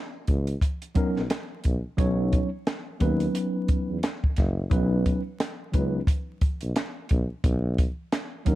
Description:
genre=hip hop, jazz-hop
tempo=88 BPM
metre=4/4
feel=swing 58% on 16ths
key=B major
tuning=A4 = 439 Hz
part: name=mellow tuba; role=bass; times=0.3-8.6 s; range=F#1 to E2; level=-27 LUFS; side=equal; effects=none
part: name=compact cocktail drum kit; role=drums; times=0.3-8.6 s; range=hi-hat, kick drum, snare drum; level=-25 LUFS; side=equal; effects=none
part: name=mellow tine electric piano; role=accompaniment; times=0.9-8.6 s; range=F#3 to C#5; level=-27 LUFS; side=equal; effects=medium stereo tremolo
room=small room ambience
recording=dark, warm production, vinyl crackle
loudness=-24 LUFS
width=side -16 dB against mid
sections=0.0-8.6 A section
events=none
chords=0.0 Badd9

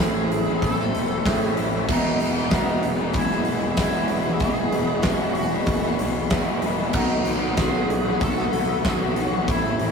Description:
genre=rock, shoegaze and dream pop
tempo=95 BPM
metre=4/4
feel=straight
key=E major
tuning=A4 = 441 Hz
part: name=smooth overdriven lead guitar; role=melody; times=0.0-9.9 s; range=D#4 to A4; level=-28 LUFS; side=equal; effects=none
part: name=warm analog pad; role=sustained chords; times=0.0-9.9 s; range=A3 to E6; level=-35 LUFS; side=equal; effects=none
part: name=overdriven electric guitar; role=riff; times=0.0-9.9 s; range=E2 to F#4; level=-29 LUFS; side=right 4 dB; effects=none
part: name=overdriven semi-hollow guitar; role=riff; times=0.0-9.9 s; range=E2 to F#4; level=-27 LUFS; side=left 4 dB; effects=none
part: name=fuzz picked electric bass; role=bass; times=0.0-9.9 s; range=E1 to A2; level=-28 LUFS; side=equal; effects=overdrive
part: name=huge arena drum kit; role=drums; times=0.0-9.9 s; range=crash cymbal, hi-hat, kick drum, snare drum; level=-24 LUFS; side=equal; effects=none
room=moderate small room reverb, RT60 0.5 s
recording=rough rehearsal-room recording, tube saturation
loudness=-20 LUFS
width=side -5 dB against mid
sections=0.0-9.9 A section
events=none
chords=0.0 Am; 1.9 Emaj7; 6.9 B7

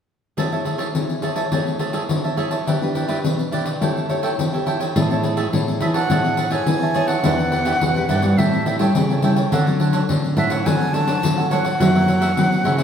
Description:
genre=samba and choro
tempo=105 BPM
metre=4/4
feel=straight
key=A major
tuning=A4 = 440 Hz
part: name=cavaquinho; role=accompaniment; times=0.4-12.8 s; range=D4 to A5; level=-25 LUFS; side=right 4 dB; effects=none
part: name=nylon-string guitar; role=accompaniment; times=0.4-12.8 s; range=F#2 to C#5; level=-24 LUFS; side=left 2 dB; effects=none
part: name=pandeiro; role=percussion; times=0.4-12.8 s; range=none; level=-22 LUFS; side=left 2 dB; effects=none
part: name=nylon-string guitar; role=bass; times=5.0-12.8 s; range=E2 to F#3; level=-22 LUFS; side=right 1 dB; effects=none
part: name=breathy bright jazz flute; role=melody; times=5.8-12.8 s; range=E5 to A5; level=-23 LUFS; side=right 1 dB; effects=none
room=wet stone room reverb, RT60 1.6 s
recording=band playing live in one room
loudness=-17 LUFS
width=side -8 dB against mid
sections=0.4-5.0 A section; 5.0-12.8 B section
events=none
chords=0.4 Amaj7; 2.7 Em7; 3.8 A7; 5.0 Amaj7; 7.2 Em7; 8.4 A7; 9.5 Dmaj7; 11.8 F#7

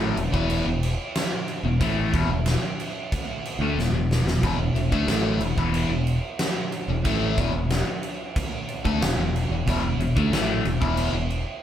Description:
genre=hard rock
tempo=92 BPM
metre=4/4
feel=straight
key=unclear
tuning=A4 = 436 Hz
part: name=overdriven electric guitar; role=riff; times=0.0-11.4 s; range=E2 to A3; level=-26 LUFS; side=left 4 dB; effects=phaser
part: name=overdriven semi-hollow guitar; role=riff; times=0.0-11.4 s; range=E2 to A3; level=-28 LUFS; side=right 5 dB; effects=none
part: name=modern bright fingered electric bass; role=bass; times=0.0-11.4 s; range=E1 to D2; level=-27 LUFS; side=equal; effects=none
part: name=huge arena drum kit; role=drums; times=0.2-11.5 s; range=crash cymbal, kick drum, snare drum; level=-26 LUFS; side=right 1 dB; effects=none
room=moderate stone room reverb, RT60 0.9 s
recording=band playing live in one room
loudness=-22 LUFS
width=side -10 dB against mid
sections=0.0-11.6 A section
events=drum fill 3.8-4.4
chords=0.0 E5

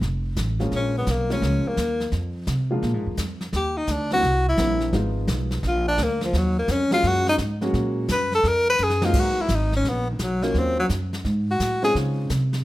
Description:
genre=jazz, small-group swing and bop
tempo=171 BPM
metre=4/4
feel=swing 65% on 8ths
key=Eb minor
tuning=A4 = 441 Hz
part: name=upright bass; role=bass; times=0.0-12.6 s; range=F1 to C#3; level=-25 LUFS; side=right 1 dB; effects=none
part: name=jazz brush drum kit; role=drums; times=0.0-12.6 s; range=brushed snare drum, crash cymbal, hi-hat, kick drum, snare drum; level=-30 LUFS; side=equal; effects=none
part: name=warm baby grand piano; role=accompaniment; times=0.6-12.3 s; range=D3 to Gb4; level=-28 LUFS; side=equal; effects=none
part: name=clear tenor saxophone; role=melody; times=0.8-11.9 s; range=D#3 to Cb5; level=-22 LUFS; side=left 1 dB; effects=none
room=moderate studio reverb, RT60 0.8 s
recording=none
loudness=-20 LUFS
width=side -16 dB against mid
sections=0.0-9.1 A section; 9.1-12.6 A section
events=tenor saxophone solo 0.0-12.6; drum fill 8.8-9.1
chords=0.0 F; 0.7 Bbm7; 2.1 Fm; 2.8 Bb7; 3.5 Ebmaj7; 4.2 C7; 4.9 Fm7b5; 5.6 Bb; 6.3 Ebm11; 9.1 G#m9; 10.5 D#m7; 11.2 G#7b9; 11.9 C#maj7

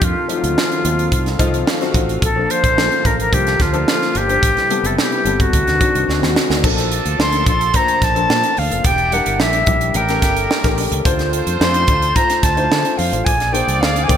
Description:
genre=polished 1980s jazz-funk pop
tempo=109 BPM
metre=4/4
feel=straight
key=unclear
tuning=A4 = 440 Hz
part: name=bright reedy silver concert flute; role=melody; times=0.0-14.2 s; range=F4 to C6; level=-18 LUFS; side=equal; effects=ping-pong delay
part: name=warm concert grand piano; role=accompaniment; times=0.0-14.2 s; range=Eb3 to C5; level=-22 LUFS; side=left 4 dB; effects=wide subtle chorus
part: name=warm analog pad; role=sustained chords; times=0.0-6.6 s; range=C3 to F5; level=-27 LUFS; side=right 1 dB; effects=chorus
part: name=fretless electric bass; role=bass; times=0.0-14.2 s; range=E1 to D3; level=-21 LUFS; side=equal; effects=none
part: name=crisp fusion drum kit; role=drums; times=0.0-14.2 s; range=crash cymbal, hi-hat, kick drum, snare drum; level=-18 LUFS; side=right 1 dB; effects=gated reverb
part: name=clear horn section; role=second line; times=6.6-14.2 s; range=D4 to D5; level=-26 LUFS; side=right 3 dB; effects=none
room=moderate lush hall reverb, RT60 1.8 s, small room ambience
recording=bright 1980s-style digital production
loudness=-14 LUFS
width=side -9 dB against mid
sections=0.0-6.6 A section; 6.6-14.2 B section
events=drum fill 6.1-6.6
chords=0.0 F7b9; 2.2 Bbmaj7; 4.4 Am9; 5.5 D7b9; 6.6 Bbmaj7; 8.8 Em7b5; 10.0 A7b9; 11.1 Dm7; 13.3 Bb9

